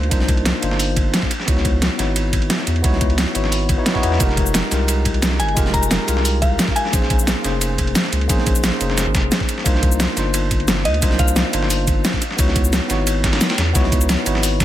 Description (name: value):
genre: liquid drum and bass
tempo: 176 BPM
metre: 4/4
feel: straight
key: unclear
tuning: A4 = 440 Hz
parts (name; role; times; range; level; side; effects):
- tine electric piano; accompaniment; 0.0-14.6 s; Ab3 to Db5; -23 LUFS; left 1 dB; medium stereo tremolo, vintage 12-bit sampler grit, dub echo
- saturated sub bass; bass; 0.0-14.6 s; F1 to Fb2; -20 LUFS; equal; none
- dusty soul sampler-style drum kit; drums; 0.0-14.6 s; hi-hat, ride cymbal, snare drum; -24 LUFS; equal; overdrive, high-pass filter on cymbals, high-pass filter on snare, high-pass filter on hats, high-pass filter on room
- electronic kick drum; drums; 0.1-14.6 s; none; -20 LUFS; equal; overdrive
- pop drum kit; drums; 0.1-14.6 s; hi-hat, shaker, snare drum; -22 LUFS; equal; overdrive
- glassy synth bell; melody; 5.4-7.0, 10.9-11.7 s; Eb5 to Bb5; -25 LUFS; left 1 dB; chorus, tremolo, ping-pong delay
room: digital ambience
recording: none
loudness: -15 LUFS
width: side -13 dB against mid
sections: 0.0-14.6 A section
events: none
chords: 0.0 Cm11; 1.3 Dbm11; 4.2 Fm11; 6.9 Bbm11; 9.7 Cm11; 12.2 Dbm11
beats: | 0.11 0.45 0.80 1.14 | 1.48 1.82 2.16 2.50 | 2.84 3.18 3.52 3.86 | 4.20 4.54 4.89 5.23 | 5.57 5.91 6.25 6.59 | 6.93 7.27 7.61 7.95 | 8.29 8.64 8.98 9.32 | 9.66 10.00 10.34 10.68 | 11.02 11.36 11.70 12.04 | 12.39 12.73 13.07 13.41 | 13.75 14.09 14.43